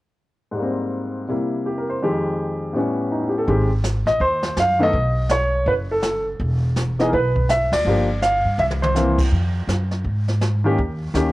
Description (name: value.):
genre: jazz piano trio.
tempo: 164 BPM.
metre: 4/4.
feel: swing 63% on 8ths.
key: unclear.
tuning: A4 = 444 Hz.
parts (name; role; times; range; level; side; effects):
warm baby grand piano; melody; 0.5-11.3 s; F2 to F5; -19 LUFS; equal; cassette tape.
upright bass; bass; 3.5-11.3 s; E1 to Ab2; -21 LUFS; equal; none.
jazz brush drum kit; drums; 3.5-11.3 s; brushed snare drum, crash cymbal, hi-hat, kick drum, ride cymbal, snare drum, toms; -27 LUFS; equal; cassette tape.
room: light reverb.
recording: home recording on cassette.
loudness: -18 LUFS.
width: side -18 dB against mid.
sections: 0.6-3.5 A section; 3.5-11.3 B section.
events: band accent 7.7; drum fill 8.6-9.0.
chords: 0.6 Abmaj9; 1.3 C7; 2.0 Fm9; 2.7 A9; 3.5 Ab; 4.9 B7; 6.4 E5; 7.9 Gm7; 8.6 C7; 9.3 Fm; 10.8 Eb7.